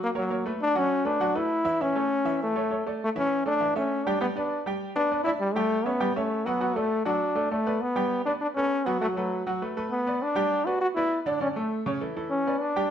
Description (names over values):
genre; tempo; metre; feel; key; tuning
latin; 200 BPM; 4/4; straight; unclear; A4 = 440 Hz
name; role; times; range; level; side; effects
bright trombone; melody; 0.0-12.9 s; F#3 to F#4; -25 LUFS; left 1 dB; none
bright upright piano; accompaniment; 0.0-12.9 s; C#3 to G5; -30 LUFS; right 2 dB; none
room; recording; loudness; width
moderate large studio reverb, RT60 1.0 s; minimal, uncompressed stereo recording; -24 LUFS; side -9 dB against mid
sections
0.0-7.8 A section; 7.8-12.9 B section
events
none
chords
0.0 F#; 0.6 Bm7; 1.8 A; 3.0 Dsus2; 4.2 G; 5.4 A7sus4; 6.0 A7; 6.6 D; 7.8 Gadd9; 9.0 B7(no3); 10.2 G; 11.4 Asus4; 12.0 A